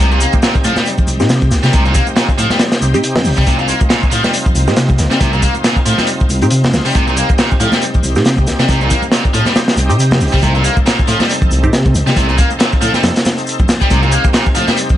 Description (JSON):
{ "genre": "breakbeat, breaks", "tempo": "138 BPM", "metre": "4/4", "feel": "swing 57% on 16ths", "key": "C dorian", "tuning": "A4 = 444 Hz", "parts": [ { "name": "bright tonewheel organ", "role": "sustained chords", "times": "0.0-15.0 s", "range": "C3 to A4", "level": "-22 LUFS", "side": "equal", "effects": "overdrive, chorus vibrato, slow rotary speaker, vintage 12-bit sampler grit, sidechain pumping" }, { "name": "tight distorted guitar", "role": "riff", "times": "0.0-14.8 s", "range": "Bb2 to Bb3", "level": "-17 LUFS", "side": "equal", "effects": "distortion, ping-pong delay" }, { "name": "dark detuned saw bass", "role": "bass", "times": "0.0-14.6 s", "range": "C2 to C3", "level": "-15 LUFS", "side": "equal", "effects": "none" }, { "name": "crunchy breakbeat drum kit", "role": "drums", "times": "0.0-15.0 s", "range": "hi-hat, kick drum, snare drum", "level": "-14 LUFS", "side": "equal", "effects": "none" }, { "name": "shaker", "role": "drums", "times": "0.1-15.0 s", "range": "none", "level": "-29 LUFS", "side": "equal", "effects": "none" }, { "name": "congas", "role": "percussion", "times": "0.3-15.0 s", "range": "none", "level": "-25 LUFS", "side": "equal", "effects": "none" }, { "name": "filtered dub chord stab", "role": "stabs", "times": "1.2-11.8 s", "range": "C4 to G4", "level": "-19 LUFS", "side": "equal", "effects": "phaser, ping-pong delay" } ], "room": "little or no reverb", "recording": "vinyl crackle, nothing above 10.5 kHz", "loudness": "-10 LUFS", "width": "side -12 dB against mid", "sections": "0.0-15.0 A section", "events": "none", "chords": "0.0 Cm" }